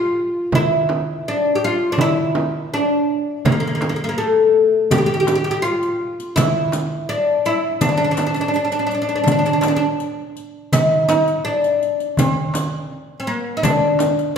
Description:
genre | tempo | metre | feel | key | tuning
Arabic maqam ensemble | 82 BPM | 4/4 | straight | D minor | A4 = 440 Hz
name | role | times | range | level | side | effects
oud | melody | 0.0-14.4 s | A3 to G4 | -17 LUFS | left 1 dB | none
darbuka | percussion | 0.2-14.3 s | none | -23 LUFS | left 2 dB | none
frame drum | percussion | 0.5-14.2 s | none | -23 LUFS | right 4 dB | none
riq | percussion | 4.9-14.3 s | none | -29 LUFS | left 4 dB | none
room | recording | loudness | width
wet recital hall reverb, RT60 1.6 s | recorded in a church or concert hall | -16 LUFS | side -7 dB against mid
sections
0.0-10.7 A section; 10.7-14.4 B section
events
none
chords
none

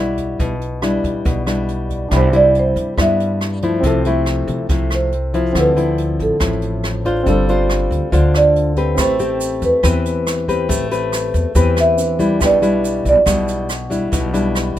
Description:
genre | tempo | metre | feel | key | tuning
bossa nova | 140 BPM | 4/4 | straight | A minor | A4 = 440 Hz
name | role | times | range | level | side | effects
nylon-string guitar | accompaniment | 0.0-14.8 s | G2 to C5 | -18 LUFS | left 2 dB | none
warm baby grand piano | accompaniment | 0.0-14.8 s | C4 to B5 | -26 LUFS | right 2 dB | none
upright bass | bass | 0.0-14.8 s | G1 to G2 | -20 LUFS | equal | none
jazz brush drum kit | drums | 0.2-14.8 s | hi-hat, kick drum, rim click | -24 LUFS | right 1 dB | none
marimba with soft mallets | melody | 2.2-13.3 s | A4 to E5 | -17 LUFS | right 2 dB | none
tube shaker | percussion | 9.0-14.8 s | none | -29 LUFS | right 6 dB | none
room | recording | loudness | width
little or no reverb | minimal, uncompressed stereo recording | -14 LUFS | side -12 dB against mid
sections
0.0-14.8 A section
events
marimba solo 0.0-14.8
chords
0.0 Em7/B; 2.1 Cmaj7; 3.8 Fmaj7/C; 5.5 Dm9; 7.3 G7sus4; 9.0 Am9; 12.4 Em7/B

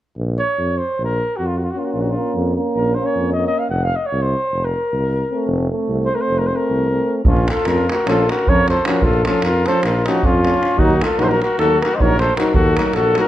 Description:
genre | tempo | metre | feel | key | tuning
balkan folk, Balkan brass band | free time | none | none | Bb harmonic minor | A4 = 444 Hz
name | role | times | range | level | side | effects
warm tuba | bass | 0.2-13.2 s | F1 to F2 | -21 LUFS | equal | none
mellow flugelhorn | melody | 0.4-13.3 s | F4 to Gb5 | -19 LUFS | equal | none
clear euphonium | accompaniment | 1.8-13.3 s | C4 to Eb4 | -25 LUFS | left 5 dB | none
clear euphonium | accompaniment | 1.8-13.3 s | F3 to Bb3 | -24 LUFS | right 4 dB | none
davul | percussion | 7.2-13.3 s | none | -20 LUFS | right 1 dB | none
warm trumpet | second line | 7.3-13.3 s | Db4 to C5 | -23 LUFS | left 3 dB | tape echo
room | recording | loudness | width
moderate recital hall reverb, RT60 1.5 s | close, detailed microphones | -15 LUFS | side -13 dB against mid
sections
0.2-7.2 A section; 7.2-13.3 B section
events
none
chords
0.2 Bbm; 3.7 F; 7.2 Bbm; 10.8 Ebm

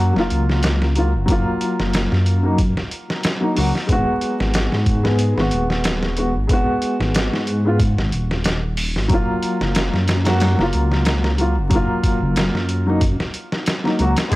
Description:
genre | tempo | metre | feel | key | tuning
trip hop | 92 BPM | 4/4 | swing 54% on 16ths | unclear | A4 = 440 Hz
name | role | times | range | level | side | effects
dark upright piano | accompaniment | 0.0-14.4 s | F#3 to G#4 | -21 LUFS | left 1 dB | tremolo, tape echo
dark detuned saw bass | bass | 0.0-14.4 s | D#1 to G#2 | -19 LUFS | equal | none
trip hop sampler-style drum kit | drums | 0.2-14.4 s | hi-hat, kick drum, snare drum | -21 LUFS | equal | small room ambience
muted studio violin section | sustained chords | 14.3-14.4 s | G#3 to F#4 | -27 LUFS | left 3 dB | none
room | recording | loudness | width
small room ambience | dry, gritty hardware recording, vinyl crackle | -16 LUFS | side -18 dB against mid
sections
0.0-14.4 A section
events
none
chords
0.0 F#maj7; 3.9 G#m7; 9.1 F#maj7

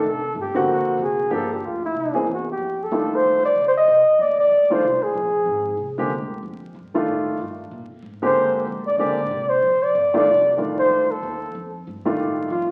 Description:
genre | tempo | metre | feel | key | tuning
jazz, small-group swing and bop | 188 BPM | 4/4 | swing 62% on 8ths | F mixolydian | A4 = 439 Hz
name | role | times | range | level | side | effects
mellow flugelhorn | melody | 0.0-6.0, 8.3-12.7 s | E4 to Eb5 | -21 LUFS | equal | none
warm concert grand piano | accompaniment | 0.0-12.5 s | D3 to G#4 | -26 LUFS | equal | none
upright bass | bass | 0.0-12.7 s | F1 to Bb2 | -40 LUFS | equal | none
room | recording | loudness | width
wet large studio reverb, RT60 1.4 s | very old 78 rpm record, vinyl crackle | -20 LUFS | mono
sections
0.0-2.6 A section; 2.6-12.7 A section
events
none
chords
0.0 F69; 0.7 D7alt; 1.3 Gm7; 1.9 Caug7; 2.6 F13; 5.1 Bb9; 6.4 F13; 7.7 Bb13; 10.3 F13

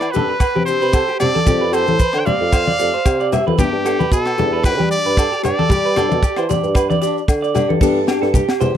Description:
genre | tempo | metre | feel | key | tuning
highlife guitar band | 113 BPM | 4/4 | straight | G mixolydian | A4 = 440 Hz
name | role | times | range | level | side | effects
brilliant trumpet | melody | 0.0-6.5 s | G4 to G5 | -20 LUFS | left 1 dB | none
electric guitar through a small old amp | arpeggios | 0.0-8.8 s | G4 to E5 | -21 LUFS | right 8 dB | spring reverb, slapback echo
dark bassoon | bass | 0.0-8.7 s | E2 to G3 | -21 LUFS | equal | none
tight funk drum kit | drums | 0.0-8.6 s | crash cymbal, hi-hat, kick drum, rim click, snare drum | -17 LUFS | equal | none
agogo bells | percussion | 0.0-8.6 s | none | -30 LUFS | left 2 dB | none
maracas | percussion | 0.0-8.7 s | none | -35 LUFS | left 12 dB | none
picked acoustic archtop guitar | accompaniment | 0.1-8.8 s | F3 to G4 | -23 LUFS | left 14 dB | none
congas | percussion | 0.2-8.8 s | none | -21 LUFS | left 4 dB | none
room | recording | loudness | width
little or no reverb | dry, close 1970s-style studio recording | -14 LUFS | side -9 dB against mid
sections
0.0-7.8 A section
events
none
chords
0.0 Csus2; 1.5 Fadd9; 3.6 G

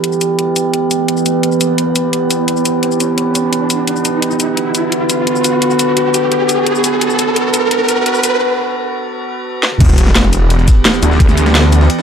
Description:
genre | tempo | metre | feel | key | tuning
dark technical drum and bass | 172 BPM | 4/4 | straight | E minor | A4 = 443 Hz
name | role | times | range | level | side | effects
metallic inharmonic drone | sustained chords | 0.0-12.0 s | D3 to B4 | -15 LUFS | right 2 dB | chorus, built-in reverb, sidechain pumping
drum and bass drum kit | drums | 0.0-12.0 s | crash cymbal, hi-hat, shaker, snare drum, toms | -15 LUFS | left 1 dB | overdrive
riser and sub drop | sound effects | 1.0-11.2 s | none | -18 LUFS | equal | none
wide detuned saw bass | bass | 9.8-11.9 s | E1 to D2 | -11 LUFS | equal | chorus, sidechain pumping
breakbeat sampler-style drum kit | drums | 9.8-12.0 s | hi-hat, snare drum | -25 LUFS | equal | none
electronic kick drum | drums | 9.8-11.3 s | none | -10 LUFS | equal | none
room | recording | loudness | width
moderate digital room reverb, RT60 1.1 s | dark, warm production, high-pass filter | -11 LUFS | side -7 dB against mid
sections
0.0-9.8 A section; 9.8-12.0 B section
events
build-up 0.0-9.8; filter sweep on synth drone 0.0-9.8; riser 1.0-8.4; break 8.4-9.8; drum fill 9.6; drop 9.8-12.0; impact 9.8-11.2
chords
0.0 Em; 4.2 Bm; 9.8 Em

